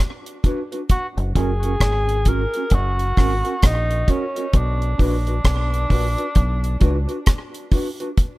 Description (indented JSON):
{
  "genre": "roots reggae",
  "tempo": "66 BPM",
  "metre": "4/4",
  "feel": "swing 61% on 16ths",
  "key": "unclear",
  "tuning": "A4 = 438 Hz",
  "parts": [
    { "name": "deep reggae drum kit", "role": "drums", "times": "0.3-8.4 s", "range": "hi-hat, kick drum, rim click", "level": "-17 LUFS", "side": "equal", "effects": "none" },
    { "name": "mellow electric guitar", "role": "accompaniment", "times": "0.4-8.1 s", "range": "C#4 to B4", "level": "-28 LUFS", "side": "right 2 dB", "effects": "tape echo" },
    { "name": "warm tenor saxophone", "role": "melody", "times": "0.9-7.7 s", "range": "C#4 to A#4", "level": "-26 LUFS", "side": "equal", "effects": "tape echo" },
    { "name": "deep dub fingered electric bass", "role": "bass", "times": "1.2-7.1 s", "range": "F#1 to C#2", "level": "-21 LUFS", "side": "equal", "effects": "none" }
  ],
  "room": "studio ambience",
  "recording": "rough home demo mix",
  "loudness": "-18 LUFS",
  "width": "side -19 dB against mid",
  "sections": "0.0-8.4 A section",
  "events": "none",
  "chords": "0.0 Bm; 0.9 F#; 4.5 Bm"
}